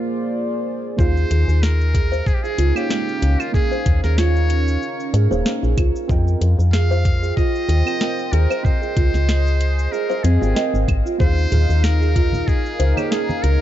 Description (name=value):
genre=organic downtempo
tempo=94 BPM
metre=4/4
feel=swing 55% on 16ths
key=unclear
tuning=A4 = 440 Hz
part: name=warm analog pad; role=sustained chords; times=0.0-13.6 s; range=Bb3 to G5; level=-27 LUFS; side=left 1 dB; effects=chorus, sidechain pumping
part: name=trumpet with metal mute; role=melody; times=1.0-13.6 s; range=F4 to F5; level=-28 LUFS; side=left 1 dB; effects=ping-pong delay
part: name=deep mellow chord stab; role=accompaniment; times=1.0-13.6 s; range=Ab3 to G5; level=-28 LUFS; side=right 3 dB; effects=chorus, sidechain pumping, ping-pong delay
part: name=kalimba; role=arpeggios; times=1.0-13.3 s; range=C4 to Eb5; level=-25 LUFS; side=right 4 dB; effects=ping-pong delay
part: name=woody FM bass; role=bass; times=1.0-13.6 s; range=Eb1 to Ab2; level=-16 LUFS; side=equal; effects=sidechain pumping
part: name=afro-pop drum kit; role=drums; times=1.0-13.6 s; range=cabasa, claves, hi-hat, snare drum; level=-26 LUFS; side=left 1 dB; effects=none
part: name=electronic kick drum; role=drums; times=1.0-12.6 s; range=none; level=-19 LUFS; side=equal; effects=none
part: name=congas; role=percussion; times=11.5-13.4 s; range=none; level=-26 LUFS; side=right 2 dB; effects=none
room=little or no reverb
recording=dark, warm production, nothing above 7.7 kHz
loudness=-16 LUFS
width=side -12 dB against mid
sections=1.0-13.6 A section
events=break 0.0-1.0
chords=0.0 Bb7; 1.0 Eb7sus4; 6.1 Fm7; 8.6 Dbmaj7; 11.2 Eb7sus4